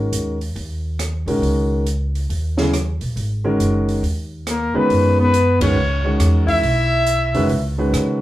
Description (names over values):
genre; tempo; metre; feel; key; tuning
modal jazz; 138 BPM; 4/4; swing 65% on 8ths; G# minor; A4 = 443 Hz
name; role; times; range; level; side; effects
clear grand piano; accompaniment; 0.0-8.2 s; C#3 to C#5; -20 LUFS; equal; none
upright bass; bass; 0.0-8.2 s; E#1 to C#3; -20 LUFS; equal; none
open jazz drum kit; drums; 0.1-8.1 s; hi-hat, kick drum, ride cymbal, rim click, snare drum; -29 LUFS; right 1 dB; none
breathy trumpet; melody; 4.5-7.7 s; A#4 to E5; -19 LUFS; left 1 dB; plate reverb
breathy alto saxophone; second line; 4.5-7.7 s; A#3 to E4; -23 LUFS; left 1 dB; none
room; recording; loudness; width
wet studio reverb, RT60 0.5 s; heard from further back in the room; -16 LUFS; side -14 dB against mid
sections
0.0-8.2 A section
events
band accent 5.6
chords
0.0 G#9sus4; 4.9 F#9sus4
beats
0.12 0.56 0.99 | 1.43 1.86 2.30 2.73 | 3.17 3.60 4.03 4.47 | 4.90 5.33 5.77 6.20 | 6.63 7.07 7.50 7.93